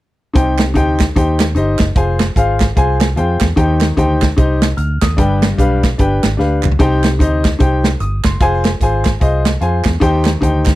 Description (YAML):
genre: uptempo gospel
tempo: 149 BPM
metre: 4/4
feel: swing 61% on 8ths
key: C harmonic minor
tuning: A4 = 440 Hz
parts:
  - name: warm grand piano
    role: accompaniment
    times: 0.3-10.7 s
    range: G2 to F6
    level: -16 LUFS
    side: left 2 dB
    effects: none
  - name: vintage muted fingered electric bass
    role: bass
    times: 0.4-10.8 s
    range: F1 to F2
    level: -16 LUFS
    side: equal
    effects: none
  - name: natural country drum kit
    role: drums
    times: 0.4-10.7 s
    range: hi-hat, kick drum, snare drum, toms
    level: -15 LUFS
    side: right 1 dB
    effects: none
  - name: group handclap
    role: percussion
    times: 0.6-10.7 s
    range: none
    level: -26 LUFS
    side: right 16 dB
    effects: none
room: light reverb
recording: dry, close 1970s-style studio recording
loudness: -12 LUFS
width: side -16 dB against mid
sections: 0.4-6.8 A section; 6.8-10.8 B section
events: drum fill 6.4-6.8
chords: 0.4 Cm; 2.0 Fm; 3.6 Cm; 5.2 G; 6.8 Cm; 8.4 Fm; 10.0 Cm